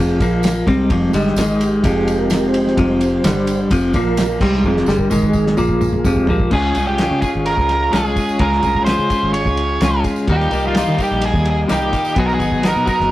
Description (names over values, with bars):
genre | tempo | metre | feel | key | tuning
psychedelic rock | 128 BPM | 4/4 | straight | unclear | A4 = 441 Hz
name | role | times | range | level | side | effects
mellow tonewheel organ | sustained chords | 0.0-13.1 s | D3 to Eb6 | -23 LUFS | right 3 dB | slow rotary speaker
clean electric guitar | riff | 0.0-13.1 s | Eb2 to Ab4 | -18 LUFS | left 2 dB | tremolo
fingered electric bass | bass | 0.0-13.1 s | F1 to Eb3 | -21 LUFS | equal | none
cloth-damped thuddy drum kit | drums | 0.2-13.1 s | crash cymbal, kick drum, ride cymbal, snare drum, toms | -22 LUFS | equal | none
tambourine | percussion | 0.2-13.0 s | none | -37 LUFS | right 3 dB | none
octave-fuzz lead guitar | melody | 6.5-13.1 s | F4 to Db5 | -19 LUFS | right 2 dB | distortion
room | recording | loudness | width
moderate small room reverb, RT60 0.5 s | rough rehearsal-room recording, tube saturation | -14 LUFS | side -15 dB against mid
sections
0.0-6.5 A section; 6.5-13.1 B section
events
tonewheel organ solo 0.0-6.5; drum fill 4.6-6.5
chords
0.2 Bb5; 0.7 Fm7; 1.4 Ab5; 1.8 Fm7; 3.2 G5; 3.7 F5; 3.9 Bb5; 4.4 Fm7; 5.1 Ab5; 5.6 Bb5; 6.0 Fm7; 6.5 Db; 10.3 Eb; 12.2 B